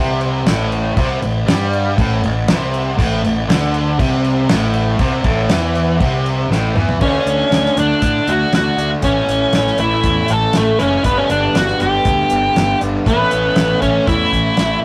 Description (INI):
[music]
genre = classic rock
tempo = 119 BPM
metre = 4/4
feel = straight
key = unclear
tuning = A4 = 442 Hz
[part]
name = crunchy overdriven guitar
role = riff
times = 0.0-14.8 s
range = G2 to F#4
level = -24 LUFS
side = equal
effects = none
[part]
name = distorted electric guitar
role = riff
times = 0.0-14.8 s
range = G2 to D4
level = -27 LUFS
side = equal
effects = overdrive
[part]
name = overdriven electric guitar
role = riff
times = 0.0-7.0 s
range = A2 to G3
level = -27 LUFS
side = equal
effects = none
[part]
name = fuzz fingered electric bass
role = bass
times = 0.0-14.8 s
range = F#1 to A2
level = -23 LUFS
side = equal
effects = overdrive
[part]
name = damped 70s drum kit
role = drums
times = 0.2-14.7 s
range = crash cymbal, hi-hat, kick drum, snare drum, toms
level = -21 LUFS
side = equal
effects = none
[part]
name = octave-fuzz lead guitar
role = melody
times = 7.0-14.8 s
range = A3 to A4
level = -18 LUFS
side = equal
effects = distortion
[sound]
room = moderate booth ambience, RT60 0.2 s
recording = rough rehearsal-room recording, warm saturation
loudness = -16 LUFS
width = mono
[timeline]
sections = 0.0-7.0 A section; 7.0-14.8 B section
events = drum fill 6.5-7.0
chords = 0.0 A5; 7.0 D; 9.0 A; 11.1 G; 13.1 A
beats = 0.47 | 0.97 1.48 1.98 2.48 | 2.99 3.49 4.00 4.50 | 5.00 5.51 6.01 6.51 | 7.02 7.52 8.03 8.53 | 9.04 9.54 10.05 10.55 | 11.05 11.56 12.06 12.56 | 13.07 13.57 14.07 14.58